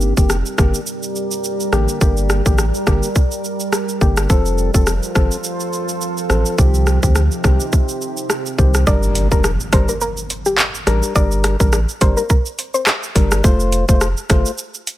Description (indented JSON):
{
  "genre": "dancehall",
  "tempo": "105 BPM",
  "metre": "4/4",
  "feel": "swing 56% on 16ths",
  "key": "G minor",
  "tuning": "A4 = 441 Hz",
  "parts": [
    { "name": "percussive organ stab", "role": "accompaniment", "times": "0.0-14.5 s", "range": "D3 to C5", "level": "-22 LUFS", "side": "left 3 dB", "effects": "chorus" },
    { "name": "deep dark ambient pad", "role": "sustained chords", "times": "0.0-8.8 s", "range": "C3 to D5", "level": "-24 LUFS", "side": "right 2 dB", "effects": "chorus, built-in reverb, sidechain pumping" },
    { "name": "sub bass with octave", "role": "bass", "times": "0.0-14.4 s", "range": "F1 to D2", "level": "-18 LUFS", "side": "equal", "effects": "none" },
    { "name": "island pop drum kit", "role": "drums", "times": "0.0-15.0 s", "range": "handclaps, hi-hat, kick drum, rim click, shaker", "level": "-16 LUFS", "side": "equal", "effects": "none" },
    { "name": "soft round pluck", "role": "melody", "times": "8.9-12.8 s", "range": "G4 to D5", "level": "-22 LUFS", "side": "left 1 dB", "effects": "chorus, digital delay" },
    { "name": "impact", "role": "sound effects", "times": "9.0-11.2 s", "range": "none", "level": "-27 LUFS", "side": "equal", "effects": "none" }
  ],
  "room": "little or no reverb",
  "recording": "none",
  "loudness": "-14 LUFS",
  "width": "side -14 dB against mid",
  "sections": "0.0-8.9 A section; 8.9-15.0 B section",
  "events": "impact 8.9-11.2",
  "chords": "0.0 Gm; 4.3 F; 6.6 Cm; 8.9 Gm; 13.4 F"
}